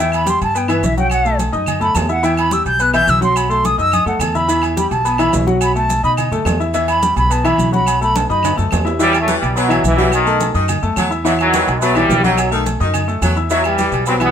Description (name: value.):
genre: latin, salsa.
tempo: 213 BPM.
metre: 4/4.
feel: straight.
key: E harmonic minor.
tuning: A4 = 440 Hz.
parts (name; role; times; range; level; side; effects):
silver concert flute; melody; 0.0-8.6 s; B4 to G6; -17 LUFS; right 1 dB; none.
clear grand piano; accompaniment; 0.0-14.3 s; E3 to E6; -19 LUFS; left 2 dB; none.
upright bass; bass; 0.0-14.3 s; B1 to B2; -20 LUFS; equal; none.
agogo bells and timbales; percussion; 0.0-14.3 s; none; -25 LUFS; right 5 dB; none.
claves; percussion; 0.1-14.3 s; none; -30 LUFS; left 1 dB; none.
congas; percussion; 0.1-14.3 s; none; -24 LUFS; equal; none.
maracas; percussion; 0.1-14.3 s; none; -31 LUFS; right 8 dB; none.
brilliant trombone section; melody; 9.0-14.3 s; B2 to C4; -16 LUFS; right 1 dB; none.
clear saxophone section; second line; 9.0-14.3 s; D#3 to G3; -22 LUFS; equal; none.
room: light reverb.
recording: minimal, uncompressed stereo recording.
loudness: -13 LUFS.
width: side -8 dB against mid.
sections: 0.0-9.0 A section; 9.0-14.3 B section.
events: flute solo 0.0-9.0; drum fill 3.9-4.5, 8.1-9.0.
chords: 0.0 Emadd9; 1.1 B7; 2.2 Emadd9; 3.4 B7; 4.5 Emadd9; 5.6 B7; 6.7 Emadd9; 7.9 B7; 9.0 Emadd9; 10.1 B7; 11.2 Emadd9; 12.4 B7; 13.5 Emadd9.